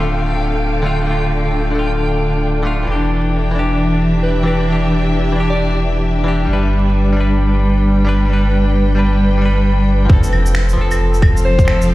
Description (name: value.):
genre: future garage.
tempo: 133 BPM.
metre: 4/4.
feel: swing 62% on 16ths.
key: unclear.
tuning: A4 = 440 Hz.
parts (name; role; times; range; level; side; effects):
direct-recorded clean electric guitar; accompaniment; 0.0-11.9 s; D3 to B4; -21 LUFS; left 2 dB; sidechain pumping, ping-pong delay.
warm studio string section; sustained chords; 0.0-11.9 s; D3 to G5; -18 LUFS; equal; sidechain pumping.
warm sub bass; bass; 0.0-11.9 s; D1 to G1; -16 LUFS; equal; sidechain pumping.
backwards swelling texture; texture; 0.0-10.1 s; G5; -30 LUFS; right 2 dB; built-in reverb.
warm alto saxophone; melody; 4.2-5.8, 11.4-11.9 s; B4 to D5; -23 LUFS; left 2 dB; ping-pong delay.
electronic kick drum; drums; 10.1-11.7 s; none; -11 LUFS; equal; none.
electronic shaker, claves and finger snaps; drums; 10.2-11.9 s; none; -23 LUFS; right 1 dB; none.
room: light reverb.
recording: played on a big sound system in a bare room, stone room reverb, vinyl crackle.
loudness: -13 LUFS.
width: side -17 dB against mid.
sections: 0.0-10.1 A section; 10.1-11.9 B section.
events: none.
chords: 0.0 Dm; 2.9 Em7; 6.5 G; 10.1 F.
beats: 0.17 0.62 | 1.07 1.52 1.98 2.43 | 2.88 3.33 3.78 4.23 | 4.68 5.13 5.59 6.04 | 6.49 6.94 7.39 7.84 | 8.29 8.74 9.20 9.65 | 10.10 10.55 11.00 11.45 | 11.90.